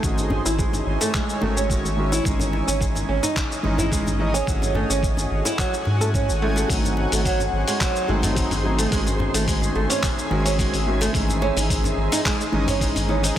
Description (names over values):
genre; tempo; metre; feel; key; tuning
organic downtempo; 108 BPM; 4/4; straight; unclear; A4 = 439 Hz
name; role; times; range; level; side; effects
felt-muted upright piano; accompaniment; 0.0-13.4 s; D#3 to G#4; -28 LUFS; equal; vintage 12-bit sampler grit, sidechain pumping, tape echo
granular cloud pad; sustained chords; 0.0-13.4 s; C#4 to G#5; -29 LUFS; equal; built-in reverb, sidechain pumping
flamenco guitar; arpeggios; 0.0-13.4 s; F#3 to A4; -26 LUFS; right 3 dB; low-pass filter, tape echo
round analog bass; bass; 0.0-13.4 s; G#1 to G#2; -24 LUFS; equal; none
dusty soul sampler-style drum kit; drums; 0.0-13.3 s; cabasa, handclaps, hi-hat; -28 LUFS; left 2 dB; soft clipping on snare
electronic kick drum; drums; 0.0-13.4 s; none; -26 LUFS; equal; none
djembe; percussion; 0.2-13.1 s; none; -32 LUFS; left 2 dB; none
wind-like tuned noise texture; texture; 7.5-13.4 s; B#3 to B#5; -35 LUFS; left 1 dB; built-in reverb
room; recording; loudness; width
light reverb, digital ambience; dense, heavily limited modern master; -19 LUFS; side -11 dB against mid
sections
0.0-13.4 A section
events
none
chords
0.0 Amaj7/G# (rootless); 2.3 C#madd9/G#; 4.5 F#m7/G#; 6.7 G#7b9; 8.9 Amaj7/G#; 11.1 C#madd9/G#